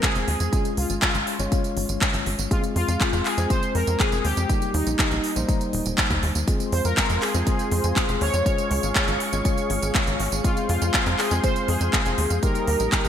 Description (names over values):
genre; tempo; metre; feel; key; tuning
italo disco; 121 BPM; 4/4; straight; F minor; A4 = 440 Hz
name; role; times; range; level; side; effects
analog synth brass; melody; 0.0-13.1 s; Eb4 to Db5; -28 LUFS; equal; chorus, digital delay, shimmer reverb
tine electric piano; stabs; 0.0-13.1 s; G3 to Db5; -29 LUFS; left 3 dB; medium stereo tremolo, shimmer reverb
electronic kick drum; drums; 0.0-13.0 s; none; -24 LUFS; equal; none
house drum kit; drums; 0.0-13.1 s; handclaps, hi-hat, tambourine; -26 LUFS; equal; gated reverb
tight sequencer bass; bass; 0.2-13.1 s; Eb1 to F2; -25 LUFS; equal; none
warm analog pad; sustained chords; 6.5-13.1 s; G4 to Db6; -30 LUFS; right 1 dB; chorus, shimmer reverb
room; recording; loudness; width
light reverb, digital ambience; bright 1980s-style digital production; -20 LUFS; side -9 dB against mid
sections
0.0-13.1 A section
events
none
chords
0.0 Fm; 0.5 Db; 2.5 Fm; 4.5 Eb; 6.5 Fm; 8.5 Db; 10.4 Fm; 12.4 Eb